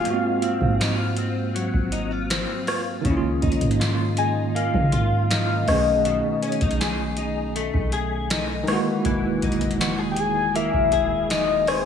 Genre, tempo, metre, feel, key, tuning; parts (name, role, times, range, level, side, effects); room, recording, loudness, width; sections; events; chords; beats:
contemporary R&B; 80 BPM; 4/4; straight; Db major; A4 = 439 Hz
soft octave-layered synth lead; melody; 0.0-11.9 s; C5 to Ab5; -24 LUFS; left 3 dB; chorus, phaser, digital delay
bell-like tine electric piano; accompaniment; 0.0-11.9 s; Eb3 to Ab4; -26 LUFS; right 2 dB; medium stereo tremolo
direct-recorded clean electric guitar; arpeggios; 0.0-11.9 s; Ab2 to G#4; -29 LUFS; left 4 dB; ensemble chorus
booming analog drum machine; drums; 0.1-11.9 s; hi-hat, kick drum, rim click, snare drum; -27 LUFS; equal
soft 808-style bass; bass; 0.6-11.9 s; D#1 to Db3; -27 LUFS; equal
light reverb, digital ambience; small room ambience; -20 LUFS; side -8 dB against mid
0.0-11.9 A section
0.0 Ab13; 3.0 Db69; 5.7 Cb13; 8.7 Emaj9#11
| 0.05 0.80 1.55 2.30 | 3.05 3.80 4.55 5.30 | 6.05 6.80 7.55 8.30 | 9.05 9.80 10.55 11.30